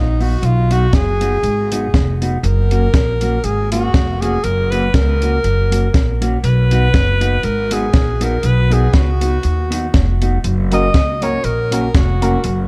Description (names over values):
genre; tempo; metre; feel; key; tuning
ska; 120 BPM; 4/4; swing 56% on 8ths; F# major; A4 = 439 Hz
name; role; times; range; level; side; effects
breathy alto saxophone; melody; 0.0-12.7 s; D#4 to D#5; -23 LUFS; equal; tape echo
upright bass; bass; 0.0-12.7 s; E#1 to D#2; -19 LUFS; equal; none
mellow electric guitar; accompaniment; 0.2-12.4 s; A#3 to F#4; -26 LUFS; equal; spring reverb, tape echo
compact cocktail drum kit; drums; 0.2-12.6 s; hi-hat, kick drum, snare drum; -18 LUFS; equal; none
dark upright piano; stabs; 10.7-12.4 s; C#4 to A#4; -26 LUFS; equal; tube saturation
room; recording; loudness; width
light reverb; dark, warm production; -16 LUFS; mono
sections
0.0-12.7 A section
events
alto saxophone solo 0.0-12.7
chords
0.0 B; 2.4 F#; 6.4 B; 10.4 F#